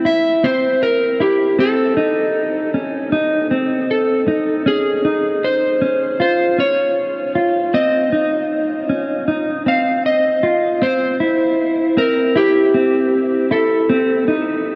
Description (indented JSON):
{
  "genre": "dream pop",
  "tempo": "78 BPM",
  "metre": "4/4",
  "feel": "straight",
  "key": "unclear",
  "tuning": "A4 = 439 Hz",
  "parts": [
    { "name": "electric slide guitar", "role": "melody", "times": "0.0-14.8 s", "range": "G4 to F5", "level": "-20 LUFS", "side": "equal", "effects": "tape echo" },
    { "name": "mellow electric guitar", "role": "arpeggios", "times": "0.0-14.8 s", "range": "C4 to F4", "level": "-20 LUFS", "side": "equal", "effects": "lush chorus, tape echo" }
  ],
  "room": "wet huge ambient reverb, RT60 8.0 s",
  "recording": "none",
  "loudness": "-17 LUFS",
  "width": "mono",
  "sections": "0.0-14.8 A section",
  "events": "none",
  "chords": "0.0 C; 1.6 Cm6; 4.7 Dbmaj7; 7.7 Cmadd11; 10.8 C; 13.9 Cm6",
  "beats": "0.05 0.81 | 1.58 2.35 3.12 3.89 | 4.66 5.43 6.20 6.97 | 7.74 8.51 9.28 10.05 | 10.81 11.58 12.35 13.12 | 13.89 14.66"
}